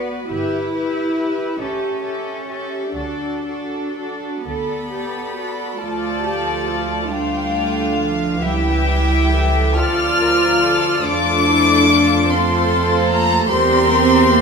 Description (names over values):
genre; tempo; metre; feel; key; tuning
classical, slow romantic movement for string orchestra; 39-50 BPM (dotted quarters); 6/8; rubato; D major, D minor from 5.8 s; A4 = 437 Hz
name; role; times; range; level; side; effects
warm chamber violin section; melody; 0.0-14.4 s; D5 to F6; -21 LUFS; left 3 dB; none
warm studio violin section; second line; 0.0-14.4 s; F4 to F5; -23 LUFS; left 1 dB; none
dark studio viola section; accompaniment; 0.0-14.4 s; E3 to A4; -22 LUFS; right 2 dB; none
rich studio double bass section; bass; 0.0-14.4 s; G1 to F2; -23 LUFS; right 2 dB; none
warm studio cello section; bass; 0.0-14.4 s; F3 to F4; -22 LUFS; left 1 dB; none
room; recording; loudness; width
wet scoring stage reverb, RT60 1.6 s; minimal, uncompressed stereo recording; -16 LUFS; side -5 dB against mid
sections
0.0-5.8 A section; 5.8-14.4 B section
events
none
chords
0.3 Em/G; 1.6 A7; 2.9 D; 5.8 Dm; 8.4 A7/C#; 9.8 Dm; 11.1 F; 13.5 C7/E